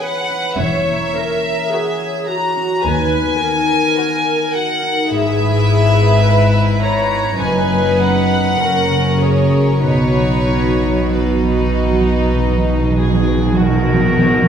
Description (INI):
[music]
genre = classical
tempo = 47-54 BPM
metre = 4/4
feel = rubato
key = B major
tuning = A4 = 440 Hz
[part]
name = clear studio violin section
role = melody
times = 0.0-13.6 s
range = B4 to A#5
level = -20 LUFS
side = left 1 dB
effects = none
[part]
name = warm studio violin section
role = second line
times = 0.0-14.5 s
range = C#4 to B4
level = -22 LUFS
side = left 1 dB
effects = none
[part]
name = dark studio viola section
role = accompaniment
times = 0.0-14.2 s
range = F#4 to C#5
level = -21 LUFS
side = right 1 dB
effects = none
[part]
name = concert harp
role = arpeggios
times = 0.0-14.5 s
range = F#2 to G#5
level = -20 LUFS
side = left 3 dB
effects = none
[part]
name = rich chamber cello section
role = bass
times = 0.6-14.5 s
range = D#2 to B2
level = -20 LUFS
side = equal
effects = none
[part]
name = warm studio double bass section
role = bass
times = 0.6-14.5 s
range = E1 to D#2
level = -20 LUFS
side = right 1 dB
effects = none
[part]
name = timpani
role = percussion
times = 7.4-14.5 s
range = F#2 to B2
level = -20 LUFS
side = right 1 dB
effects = none
[part]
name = clear clarinet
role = second line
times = 13.6-14.5 s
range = A#4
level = -18 LUFS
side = left 1 dB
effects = none
[sound]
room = wet recital hall reverb, RT60 1.5 s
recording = recorded in a church or concert hall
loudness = -13 LUFS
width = side -8 dB against mid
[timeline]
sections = 0.0-14.5 A section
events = timpani fill 9.8-14.5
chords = 0.0 C#m7/E; 0.6 F#7/E; 2.9 B/D#; 5.1 E/G#; 7.4 B/F#; 8.6 F#; 9.8 B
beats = | 0.59 1.72 2.85 3.99 | 5.12 6.25 7.41 8.59 | 9.85 11.12 12.38 13.60